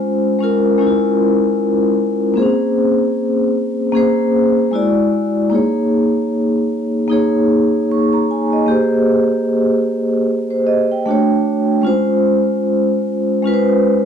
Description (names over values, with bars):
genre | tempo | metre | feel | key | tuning
hip hop | 76 BPM | 4/4 | swing 56% on 16ths | Bb dorian | A4 = 438 Hz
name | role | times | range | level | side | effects
vibraphone with soft mallets | solo | 0.0-14.1 s | Ab3 to Db6 | -13 LUFS | equal | none
room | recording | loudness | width
moderate studio ambience, RT60 0.5 s | dark, warm production | -13 LUFS | side -7 dB against mid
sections
0.0-2.4 A section; 2.4-14.1 B section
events
none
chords
0.0 Dbmaj7/Ab; 2.4 Bbm9; 4.7 E9; 5.5 Eb7sus4/Bb; 8.7 Abmaj9; 11.1 Dmaj7; 11.9 Dbmaj7/Ab